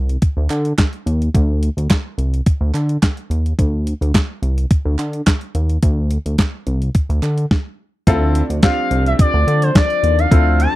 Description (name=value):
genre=early-eighties boogie funk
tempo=107 BPM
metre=4/4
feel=straight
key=unclear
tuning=A4 = 444 Hz
part: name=chorused synth bass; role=bass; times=0.0-10.7 s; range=C2 to D3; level=-16 LUFS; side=equal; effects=none
part: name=crisp 8-bit digital drum machine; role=drums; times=0.1-10.7 s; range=handclaps, hi-hat, kick drum, snare drum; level=-14 LUFS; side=equal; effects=overdrive
part: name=group handclap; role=percussion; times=0.5-7.4 s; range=none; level=-30 LUFS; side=right 8 dB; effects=none
part: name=clear baby grand piano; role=accompaniment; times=8.1-10.6 s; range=C4 to A4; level=-21 LUFS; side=left 2 dB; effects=none
part: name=lush unison pad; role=sustained chords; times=8.1-10.8 s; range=D3 to D4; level=-26 LUFS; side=right 2 dB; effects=chorus
part: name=expressive portamento lead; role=melody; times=8.6-10.8 s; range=C5 to A5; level=-18 LUFS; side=left 2 dB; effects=chorus, phaser, slapback echo
room=little or no reverb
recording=dry, close 1970s-style studio recording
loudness=-14 LUFS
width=side -16 dB against mid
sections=0.0-8.1 A section; 8.1-10.8 B section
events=stop 7.5-8.1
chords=0.0 Cmadd9; 8.1 Dm9